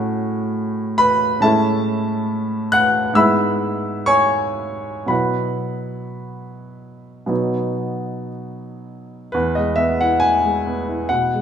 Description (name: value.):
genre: classical, romantic character piece for solo piano.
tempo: 54-70 BPM.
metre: 4/4.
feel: rubato.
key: E major.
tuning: A4 = 440 Hz.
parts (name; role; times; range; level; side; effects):
warm grand piano; solo; 0.0-11.4 s; E2 to F#6; -17 LUFS; equal; none.
room: wet recital hall reverb, RT60 1.7 s.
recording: minimal, uncompressed stereo recording.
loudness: -17 LUFS.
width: side -8 dB against mid.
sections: 0.0-9.3 A section; 9.3-11.4 B section.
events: none.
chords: 0.0 F#m/A; 1.4 Amaj7; 3.2 E/G#; 5.1 Bsus4; 7.3 B; 9.3 E.